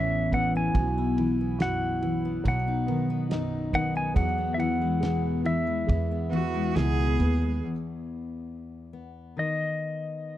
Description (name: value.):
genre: acoustic folk-pop ballad.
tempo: 70 BPM.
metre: 4/4.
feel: straight.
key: E major.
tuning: A4 = 440 Hz.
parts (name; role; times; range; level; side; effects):
pedal steel guitar; melody; 0.0-10.4 s; D#5 to G#5; -30 LUFS; left 1 dB; none.
fingerpicked steel-string acoustic guitar; accompaniment; 0.0-10.4 s; E2 to E4; -30 LUFS; left 4 dB; none.
felt-muted upright piano; arpeggios; 0.0-7.7 s; E3 to A4; -33 LUFS; right 7 dB; none.
upright bass; bass; 0.0-7.6 s; A1 to E2; -29 LUFS; right 1 dB; none.
cloth-damped thuddy drum kit; drums; 0.3-7.4 s; kick drum, ride cymbal, snare drum; -27 LUFS; right 1 dB; none.
rich cello; second line; 6.3-7.6 s; F#4 to G#4; -33 LUFS; right 6 dB; none.
room: studio reverb.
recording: dry, close 1970s-style studio recording.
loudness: -24 LUFS.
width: side -13 dB against mid.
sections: 0.0-7.6 A section; 7.6-10.4 B section.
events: none.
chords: 0.0 Aadd9; 0.7 Bsus4; 2.5 B; 4.2 Eadd9; 7.6 E5; 9.4 B/D#.